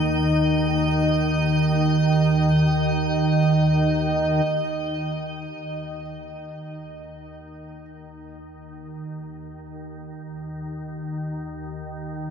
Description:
dark ambient drone; free time; A4 = 437 Hz
sweeping resonant pad; sustained chords; 0.0-4.5 s; barely audible
dark grand piano; arpeggios; 0.0-4.5 s; barely audible
organ-like drone; drone; 0.0-12.3 s; Eb2 to Eb3; -22 LUFS; right 1 dB; ensemble chorus, built-in reverb
icy glass pad; texture; 0.0-4.5 s; Eb5; -28 LUFS; right 1 dB; chorus, built-in reverb
wet huge ambient reverb, RT60 7.6 s; -20 LUFS; side -7 dB against mid
0.0-4.5 A section; 4.5-12.3 B section
fade-in on synth drone 4.5-12.3
0.0 Ebsus2; 4.5 N.C.
free time

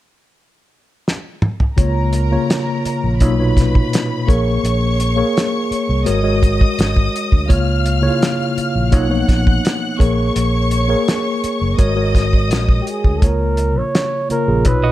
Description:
lush 1970s-style soul; 84 BPM; 4/4; straight; Db major; A4 = 439 Hz
cloth-damped thuddy drum kit; drums; 1.1-14.8 s; hi-hat, kick drum, snare drum, toms; -15 LUFS; equal
warm studio string section; second line; 1.8-13.2 s; Bb4 to Gb6; -24 LUFS; left 1 dB
mellow tine electric piano; accompaniment; 1.8-14.9 s; Bb2 to Db5; -19 LUFS; left 1 dB; medium stereo tremolo
fingered electric bass; bass; 1.8-14.9 s; Gb1 to D2; -18 LUFS; equal
mellow flugelhorn; melody; 12.8-14.9 s; G4 to Db5; -20 LUFS; right 3 dB
clean electric guitar; riff; 14.8-14.9 s; Gb4 to Eb5; -19 LUFS; right 6 dB; tremolo
small room ambience; -14 LUFS; side -14 dB against mid
0.0-1.8 A section; 1.8-13.2 B section; 13.2-14.9 C section
drum fill 1.1-1.8
0.0 N.C.; 1.8 Db6; 3.2 Cbmaj9#11; 4.3 Bbm7; 6.1 Ab9sus4; 7.5 Db6; 8.9 Cbmaj9#11; 10.0 Bbm7; 11.8 Ab9sus4; 13.2 Db6
0.35 1.06 | 1.78 2.49 3.21 3.92 | 4.64 5.35 6.07 6.78 | 7.50 8.21 8.93 9.64 | 10.36 11.07 11.79 12.51 | 13.22 13.94 14.65

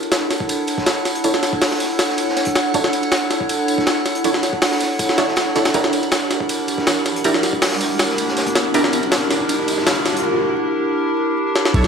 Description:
drum and bass, jungle; 160 BPM; 4/4; swing 53% on 16ths; A4 = 440 Hz
warbly tape-like pad; sustained chords; 0.0-11.9 s; D4 to C#5; -20 LUFS; equal; chorus, built-in reverb
jungle sampler-style drum kit; drums; 0.0-11.9 s; kick drum, ride cymbal, snare drum; -20 LUFS; equal; high-pass filter on kick, high-pass filter on cymbals, high-pass filter on snare, high-pass filter on hats, high-pass filter on room
drifting glass-harmonics texture; texture; 0.2-10.2 s; F#5; -28 LUFS; right 4 dB; chorus, built-in reverb
raw garage drum kit; drums; 0.1-10.2 s; hi-hat, snare drum, tambourine; -27 LUFS; equal; high-pass filter on hats, high-pass filter on snare, high-pass filter on perc, high-pass filter on room
orchestra-hit-like synth stab; stabs; 1.2-8.9, 11.7-11.9 s; D4 to C#5; -24 LUFS; right 2 dB; built-in reverb, dub echo
riser; sound effects; 6.9-10.2 s; -26 LUFS; equal
long sustained 808-style bass; bass; 11.7-11.9 s; B1; -16 LUFS; equal
moderate plate reverb, RT60 2.0 s, digital ambience; vinyl crackle; -16 LUFS; side -6 dB against mid
0.0-11.7 A section
build-up 0.0-11.7; filter sweep on synth stab 0.0-11.7; riser 6.9-10.2; drum fill 11.6
0.0 Dmaj9; 5.7 F#7b9b13
0.12 0.49 0.87 | 1.25 1.62 2.00 2.37 | 2.75 3.12 3.50 3.87 | 4.25 4.62 5.00 5.37 | 5.75 6.12 6.50 6.87 | 7.25 7.62 8.00 8.37 | 8.74 9.12 9.49 9.87 | 10.24 10.62 10.99 11.37 | 11.74

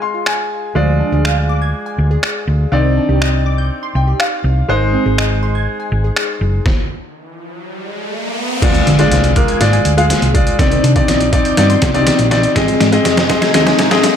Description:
dance-pop; 122 BPM; 4/4; straight; A4 = 442 Hz
clear concert grand piano; accompaniment; 0.0-14.2 s; Ab3 to C6; -16 LUFS; left 2 dB; sidechain pumping
glassy wavetable pluck; arpeggios; 0.1-14.0 s; Eb3 to Ab6; -23 LUFS; right 1 dB; chorus, sidechain pumping, ping-pong delay
trip hop sampler-style drum kit; drums; 0.3-14.2 s; crash cymbal, finger snaps, hi-hat, kick drum, snare drum; -16 LUFS; equal; overdrive
hollow-body short-scale fingered electric bass; bass; 0.8-14.0 s; F1 to D3; -15 LUFS; equal; sidechain pumping
riser and impact; sound effects; 7.4-14.2 s; -23 LUFS; equal
glassy FM pad; sustained chords; 13.1-14.2 s; C3 to Eb4; -22 LUFS; right 1 dB; ensemble chorus, built-in reverb, sidechain pumping
light reverb; high-pass filter; -12 LUFS; side -8 dB against mid
0.0-8.6 A section; 8.6-14.2 B section
grand piano fill 0.0-0.8, 3.7-4.7; stop 6.7-8.6; riser 7.4-8.6; build-up 8.6-14.2; drum fill 8.6-14.2; impact 8.6-10.6
0.0 Fm7; 0.8 Ddim; 2.7 Cmadd9; 4.7 Ab; 6.7 N.C.; 8.6 Ddim; 10.6 Cmadd9; 12.6 Ab
0.26 | 0.76 1.25 1.74 2.23 | 2.72 3.21 3.71 4.20 | 4.69 5.18 5.67 6.17 | 6.66 7.15 7.64 8.13 | 8.62 9.12 9.61 10.10 | 10.59 11.08 11.57 12.07 | 12.56 13.05 13.54 14.03

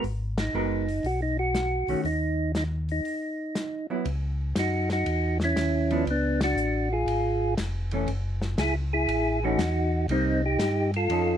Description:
soul jazz organ trio; 119 BPM; 4/4; swing 67% on 8ths; G# minor; A4 = 442 Hz
percussive tonewheel organ; melody; 0.0-11.4 s; B3 to A4; -26 LUFS; right 1 dB; slow rotary speaker
hollow-body jazz guitar; accompaniment; 0.0-11.4 s; D#3 to A#4; -29 LUFS; right 2 dB
mellow tonewheel organ; bass; 0.0-11.4 s; E#1 to G2; -28 LUFS; left 1 dB; slow rotary speaker
warm soul drum kit; drums; 0.0-11.3 s; hi-hat, ride cymbal, snare drum; -34 LUFS; left 1 dB
little or no reverb; close, detailed microphones; -24 LUFS; side -9 dB against mid
0.0-4.1 A section; 4.1-11.4 B section
band accent 0.3, 6.3; break 3.1-4.1
0.0 G#m9; 2.0 N.C.; 3.1 Badd11; 4.1 C#madd9; 6.1 C#7b9; 8.1 F#m7; 10.1 Cm7
| 0.04 0.54 1.04 1.54 | 2.05 2.55 3.05 3.56 | 4.06 4.56 5.06 5.57 | 6.07 6.57 7.07 7.58 | 8.08 8.58 9.08 9.59 | 10.09 10.60 11.10

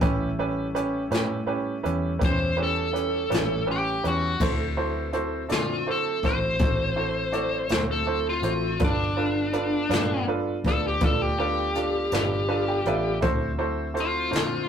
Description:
slow blues; 54 BPM (dotted quarters); 12/8; straight; D mixolydian; A4 = 442 Hz
bright upright piano; accompaniment; 0.0-14.6 s; C#4 to B5; -28 LUFS; right 3 dB
tonewheel organ; sustained chords; 0.0-14.7 s; F#3 to E5; -39 LUFS; left 2 dB
vintage muted fingered electric bass; bass; 0.0-14.7 s; G1 to D3; -31 LUFS; left 1 dB
jazz brush drum kit; drums; 0.0-14.5 s; crash cymbal, hi-hat, kick drum, snare drum; -27 LUFS; left 1 dB
smooth overdriven lead guitar; melody; 2.2-14.7 s; D4 to C5; -26 LUFS; left 2 dB
moderate small room reverb, RT60 0.5 s; rough rehearsal-room recording, tube saturation; -23 LUFS; side -8 dB against mid
0.0-4.4 A section; 4.4-14.7 B section
lead electric guitar solo 4.4-14.7; upright piano fill 12.1-13.2
0.0 A7; 4.4 D7; 8.8 G7; 13.2 D7
| 0.01 1.11 2.21 3.31 | 4.41 5.50 6.61 7.71 | 8.81 9.91 11.01 12.12 | 13.22 14.32

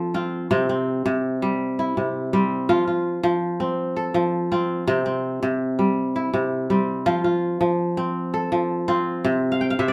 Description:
west african traditional; 110 BPM (dotted quarters); 12/8; straight; F major; A4 = 440 Hz
kora; solo; 0.0-9.9 s; C3 to G5; -23 LUFS; equal
moderate small room reverb, RT60 0.5 s; -23 LUFS; mono
0.0-7.1 A section; 7.1-9.9 B section
kora fill 9.5-9.9
0.0 F; 0.5 C; 2.7 F; 4.9 C; 7.1 F; 9.2 C5
| 0.51 1.05 1.60 2.15 | 2.69 3.24 3.78 4.33 | 4.88 5.42 5.97 6.51 | 7.06 7.61 8.15 8.70 | 9.25 9.79

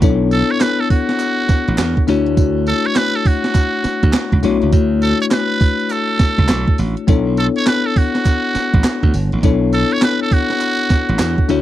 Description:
R&B, new jack swing; 102 BPM; 4/4; swing 63% on 16ths; B minor; A4 = 442 Hz
bell-like tine electric piano; accompaniment; 0.0-11.6 s; A3 to C#5; -18 LUFS; left 7 dB
glassy slap bass; bass; 0.0-11.6 s; G1 to E2; -18 LUFS; right 1 dB
gated 80s digital drum machine; drums; 0.0-11.6 s; handclaps, hi-hat, kick drum, snare drum, tambourine; -15 LUFS; right 2 dB; gated reverb, gated reverb snare
trumpet with metal mute; melody; 0.3-11.5 s; F#4 to C#5; -20 LUFS; right 3 dB
group handclap; percussion; 0.6-11.4 s; -35 LUFS; right 11 dB
light reverb; dry, close 1970s-style studio recording; -13 LUFS; side -13 dB against mid
0.0-11.6 A section
0.0 Bm11; 2.1 Dmaj9; 7.1 Bm11
| 0.02 0.61 1.20 1.78 | 2.37 2.96 3.55 4.14 | 4.73 5.31 5.90 6.49 | 7.08 7.67 8.26 8.84 | 9.43 10.02 10.61 11.20

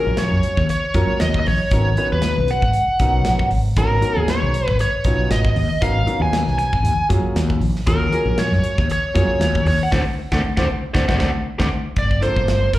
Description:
electric jazz fusion; 117 BPM; 4/4; swing 55% on 16ths; Eb minor; A4 = 442 Hz
biting lead guitar; melody; 0.0-12.8 s; Bb4 to Ab5; -21 LUFS; equal; overdrive, slapback echo
clear grand piano; accompaniment; 0.0-12.7 s; F3 to Cb5; -26 LUFS; left 1 dB; slapback echo
mellow fretless electric bass; bass; 0.1-12.8 s; G1 to Gb2; -19 LUFS; equal
modern studio drum kit; drums; 0.2-12.8 s; hi-hat, kick drum, snare drum; -24 LUFS; equal
small room ambience; live gig heard through the venue's PA, club reverb; -16 LUFS; side -15 dB against mid
0.0-12.0 A section
band accent 9.9-12.0; drum fill 10.9-12.0
0.0 Ebm11; 1.7 Abm11; 6.8 Ebm11; 9.9 D7; 12.0 Gm11
0.18 0.69 1.20 | 1.72 2.23 2.74 3.25 | 3.77 4.28 4.79 5.31 | 5.82 6.33 6.84 7.36 | 7.87 8.38 8.89 9.41 | 9.92 10.43 10.94 11.46 | 11.97 12.48

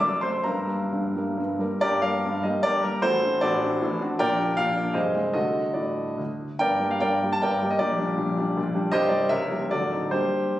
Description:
classical, romantic triple-time dance for piano with dotted rhythms; 122-170 BPM; 3/4; rubato; G minor; A4 = 440 Hz
warm concert grand piano; solo; 0.0-10.6 s; C1 to D6; -22 LUFS; equal
moderate recital hall reverb, RT60 1.4 s; recorded on a phone in the room, studio reverb, compression; -22 LUFS; side -14 dB against mid
0.0-1.8 A section; 1.8-10.6 A section
0.0 D7/F#; 0.5 Gm; 3.0 D7/A; 4.2 Gm/Bb; 5.0 Ab/C; 5.4 D; 6.6 Gm; 7.8 Gm/Bb; 8.9 Cm; 9.3 C#dim7; 9.7 D7b9
0.03 | 0.46 0.93 1.39 | 1.82 2.24 2.65 | 3.04 3.44 3.83 | 4.21 4.58 4.96 | 5.35 5.77 6.20 | 6.61 7.02 7.43 | 7.81 8.19 8.58 | 8.95 9.32 9.72 | 10.14 10.60

